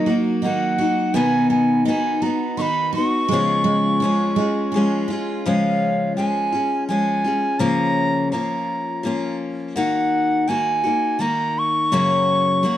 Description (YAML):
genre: acoustic folk duo or small band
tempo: 84 BPM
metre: 3/4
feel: straight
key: Db mixolydian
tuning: A4 = 440 Hz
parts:
  - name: bright reedy bansuri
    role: melody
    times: 0.0-12.8 s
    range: Eb5 to Db6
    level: -21 LUFS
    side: right 1 dB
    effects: none
  - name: picked steel-string acoustic guitar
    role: accompaniment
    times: 0.0-12.8 s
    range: Gb2 to Gb4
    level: -21 LUFS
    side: left 3 dB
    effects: none
  - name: picked steel-string acoustic guitar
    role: arpeggios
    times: 0.0-5.5 s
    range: Gb3 to Gb4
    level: -23 LUFS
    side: right 4 dB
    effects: none
room: light reverb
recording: dark, warm production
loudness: -18 LUFS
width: side -12 dB against mid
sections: 0.0-5.4 A section; 5.4-12.8 B section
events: none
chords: 0.0 Ebm; 1.1 Cb; 3.3 Db; 7.6 Bbm/Db; 9.8 Ebm; 11.9 Gb